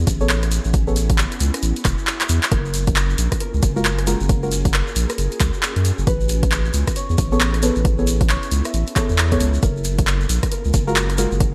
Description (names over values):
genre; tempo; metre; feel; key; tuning
UK garage, two-step garage; 135 BPM; 4/4; swing 61% on 16ths; F# major; A4 = 441 Hz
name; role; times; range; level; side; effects
ethereal airy pad; sustained chords; 0.0-11.5 s; A#3 to A4; -36 LUFS; equal; ensemble chorus, built-in reverb, phaser, sidechain pumping
saturated sub bass; bass; 0.0-11.5 s; E1 to F#2; -22 LUFS; equal; tube saturation
electronic kick drum; drums; 0.1-11.5 s; none; -23 LUFS; equal; overdrive
punchy analog drum machine; drums; 0.1-11.5 s; handclaps, hi-hat, rim click; -26 LUFS; equal; overdrive, gated reverb
shekere; percussion; 0.1-11.5 s; none; -34 LUFS; equal; none
deep mellow chord stab; stabs; 0.2-0.9, 3.8-4.5, 7.3-11.3 s; G#3 to C#5; -26 LUFS; equal; subtle chorus, cassette tape
concert harp; melody; 2.5-11.5 s; A#4 to E5; -33 LUFS; equal; none
room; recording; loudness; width
digital ambience; bright 1980s-style digital production; -19 LUFS; mono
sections
0.0-11.5 A section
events
filter sweep on synth stab 0.0-11.5; drum fill 2.2-2.5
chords
0.0 Amaj9; 2.5 F#maj9; 6.1 Amaj9; 9.6 F#maj9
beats
0.29 | 0.74 1.18 1.63 2.07 | 2.52 2.96 3.40 3.85 | 4.29 4.74 5.18 5.63 | 6.07 6.51 6.96 7.40 | 7.85 8.29 8.74 9.18 | 9.63 10.07 10.52 10.96 | 11.40